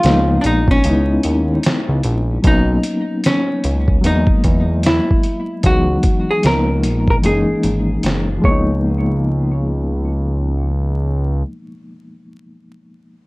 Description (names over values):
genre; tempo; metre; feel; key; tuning
lo-fi hip hop; 75 BPM; 4/4; swing 61% on 16ths; C# dorian; A4 = 440 Hz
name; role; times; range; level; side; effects
archtop guitar, miked and amplified; melody; 0.0-11.4 s; C#4 to C#5; -20 LUFS; equal; low-pass filter, tape echo
reed electric piano; accompaniment; 0.0-13.3 s; D#3 to D#5; -20 LUFS; left 1 dB; fast tremolo, low-pass filter
fat analog bass; bass; 0.0-11.4 s; F#1 to E2; -18 LUFS; equal; none
dusty soul sampler-style drum kit; drums; 0.0-8.7 s; hi-hat, kick drum, snare drum; -17 LUFS; equal; vintage 12-bit sampler grit
room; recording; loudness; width
light reverb; vinyl crackle; -14 LUFS; side -24 dB against mid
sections
0.0-2.4 A section; 2.4-8.8 B section; 8.8-12.0 C section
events
break 0.8-2.4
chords
0.0 C#13; 0.8 C#m7; 2.4 Bmaj9; 4.0 Emaj9#11; 5.6 C#m11; 6.4 C#13; 7.2 F#13; 8.4 C#13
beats
0.04 0.84 1.64 | 2.44 3.24 4.04 4.84 | 5.64 6.44 7.24 8.04 | 8.84 9.64 10.44 11.24